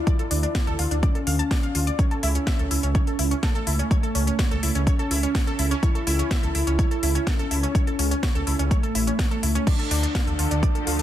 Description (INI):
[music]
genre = melodic techno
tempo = 125 BPM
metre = 4/4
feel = straight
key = unclear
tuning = A4 = 444 Hz
[part]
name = soft octave-layered synth lead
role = melody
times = 0.0-11.0 s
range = A3 to E4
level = -28 LUFS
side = equal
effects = chorus, phaser, cassette tape, sidechain pumping, ping-pong delay
[part]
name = analog pluck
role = arpeggios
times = 0.0-11.0 s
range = C#4 to A6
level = -30 LUFS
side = right 2 dB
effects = chorus, sidechain pumping, dub echo
[part]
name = electronic kick drum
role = drums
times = 0.1-10.7 s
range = none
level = -22 LUFS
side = equal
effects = overdrive
[part]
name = techno drum kit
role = drums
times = 0.1-11.0 s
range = crash cymbal, hi-hat, snare drum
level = -29 LUFS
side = left 1 dB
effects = none
[part]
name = dark detuned saw bass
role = bass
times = 0.3-11.0 s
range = A1 to D2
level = -24 LUFS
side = equal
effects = tube saturation, sidechain pumping
[part]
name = clear studio string section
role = sustained chords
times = 9.7-11.0 s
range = D3 to A4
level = -32 LUFS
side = left 3 dB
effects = sidechain pumping
[sound]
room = little or no reverb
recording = dense, heavily limited modern master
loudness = -20 LUFS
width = side -12 dB against mid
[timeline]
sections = 0.0-11.0 A section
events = none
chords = 0.0 Dm; 2.0 A/C#; 9.7 Dm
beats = | 0.07 0.55 1.03 1.51 | 1.99 2.47 2.95 3.43 | 3.91 4.39 4.87 5.35 | 5.83 6.31 6.79 7.27 | 7.75 8.23 8.71 9.19 | 9.67 10.15 10.63